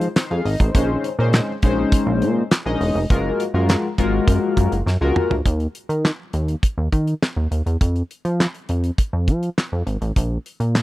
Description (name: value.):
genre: early-eighties boogie funk.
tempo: 102 BPM.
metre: 4/4.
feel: straight.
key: unclear.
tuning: A4 = 440 Hz.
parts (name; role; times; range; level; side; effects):
chorused polysynth; accompaniment; 0.0-5.3 s; Ab3 to F5; -21 LUFS; left 3 dB; none.
chorused synth bass; bass; 0.0-10.8 s; Fb1 to F3; -20 LUFS; equal; none.
damped 70s drum kit; drums; 0.0-10.8 s; handclaps, hi-hat, kick drum, snare drum, toms; -18 LUFS; equal; none.
room: studio ambience.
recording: dry, close 1970s-style studio recording.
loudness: -18 LUFS.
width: side -16 dB against mid.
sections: 0.0-5.5 A section; 5.5-10.8 B section.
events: drum fill 4.9-5.5.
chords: 0.0 Fm7; 0.7 Bbm11; 3.1 Gbmaj9; 5.5 N.C.; 10.2 Bb5.